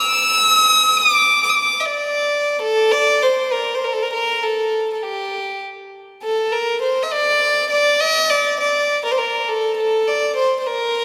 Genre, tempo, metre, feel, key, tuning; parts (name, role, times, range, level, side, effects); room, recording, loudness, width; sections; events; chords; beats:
arabic; 101 BPM; 3/4; straight; D maqam bayati; A4 = 440 Hz
clear violin; solo; 0.0-11.0 s; G4 to Eb6+50c; -17 LUFS; equal
wet church reverb, RT60 2.7 s; recorded in a church or concert hall; -17 LUFS; mono
0.0-3.2 A section; 3.2-11.0 B section
0.23 0.83 | 1.42 2.02 2.61 | 3.21 3.81 4.40 | 5.00 5.59 6.19 | 6.79 7.38 7.98 | 8.58 9.17 9.77 | 10.37 10.96